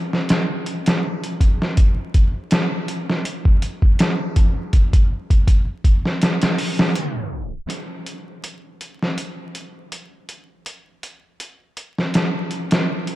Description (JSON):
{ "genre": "trip hop", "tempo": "81 BPM", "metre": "4/4", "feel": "swing 54% on 16ths", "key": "none", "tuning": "none", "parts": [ { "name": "trip hop sampler-style drum kit", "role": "drums", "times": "0.1-13.2 s", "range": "hi-hat, kick drum, snare drum", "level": "-17 LUFS", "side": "equal", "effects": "studio reverb" } ], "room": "moderate plate reverb, RT60 3.3 s", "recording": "dreamy mix soaked in reverb, vinyl crackle, tape stop", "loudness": "-17 LUFS", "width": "side -16 dB against mid", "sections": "0.0-7.7 A section; 7.7-13.2 B section", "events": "tape stop 7.0-7.7", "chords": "none" }